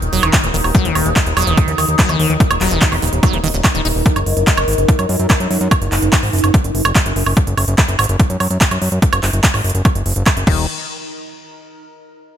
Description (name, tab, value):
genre	psychedelic trance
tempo	145 BPM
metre	4/4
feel	straight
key	unclear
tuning	A4 = 443 Hz
part	overtone-sweeping drone	sustained chords	0.0-10.5 s	Eb4 to Bb4	-23 LUFS	equal	chorus, built-in reverb, phaser, sidechain pumping
part	fat analog bass	bass	0.0-10.7 s	Eb1 to Gb2	-18 LUFS	equal	none
part	big-room dance drum kit	drums	0.0-10.6 s	crash cymbal, handclaps, hi-hat, woodblock	-19 LUFS	right 2 dB	overdrive
part	liquid acid bass	riff	0.1-3.9, 10.5-10.7 s	Eb3 to Eb4	-21 LUFS	moving between left 8 dB and right 6 dB	chorus, auto-pan, sidechain pumping, tape echo
part	electronic kick drum	drums	0.3-10.6 s	none	-14 LUFS	equal	overdrive
room	light reverb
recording	none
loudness	-12 LUFS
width	side -10 dB against mid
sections	0.0-10.7 A section; 10.7-12.3 B section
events	filter sweep on synth drone 0.0-10.7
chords	0.0 Eb5; 4.1 Gb6; 10.5 N.C.